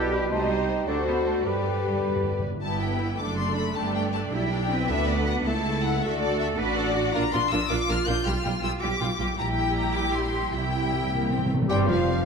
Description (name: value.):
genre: quick classical-period movement for symphony orchestra.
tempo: 106 BPM (dotted quarters).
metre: 6/8.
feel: straight.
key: G major.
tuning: A4 = 440 Hz.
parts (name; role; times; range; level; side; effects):
rich chamber violin section; melody; 0.0-12.3 s; B4 to G6; -31 LUFS; left 7 dB; none.
mellow clarinet; second line; 0.0-2.4, 11.7-12.3 s; Eb4 to G4; -32 LUFS; left 2 dB; none.
mellow hollow silver concert flute; second line; 0.0-2.4, 11.7-12.3 s; F5 to G6; -36 LUFS; left 2 dB; none.
rich chamber violin section; second line; 0.0-12.3 s; D4 to G5; -34 LUFS; left 4 dB; none.
warm oboe; second line; 0.0-2.4, 11.7-12.2 s; A4 to C5; -36 LUFS; equal; none.
mellow bassoon; accompaniment; 0.0-2.4, 11.7-12.3 s; B2 to G3; -32 LUFS; right 3 dB; none.
rich symphonic viola section; accompaniment; 0.0-12.3 s; F3 to C5; -30 LUFS; right 1 dB; none.
mellow French horn section; sustained chords; 0.0-2.4, 11.7-12.3 s; F3 to Eb5; -29 LUFS; left 3 dB; none.
clear chamber cello section; bass; 0.0-12.3 s; F2 to B4; -31 LUFS; right 5 dB; none.
rich studio double bass section; bass; 0.0-12.3 s; F1 to G2; -29 LUFS; right 3 dB; none.
timpani; percussion; 1.5-2.6, 10.5-11.7 s; G2 to C3; -31 LUFS; left 1 dB; none.
room: moderate concert hall reverb, RT60 1.8 s.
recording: none.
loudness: -23 LUFS.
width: side -5 dB against mid.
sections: 0.0-2.6 A section; 2.6-11.7 A section.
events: timpani fill 1.5-2.6, 10.5-11.7.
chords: 0.3 Cm; 0.9 D7; 1.5 G; 3.2 D/F#; 3.8 G; 4.9 D; 5.5 A/C#; 6.0 D; 7.1 Bb; 8.3 G7/B; 9.4 C7/Bb; 10.5 C; 11.7 F5.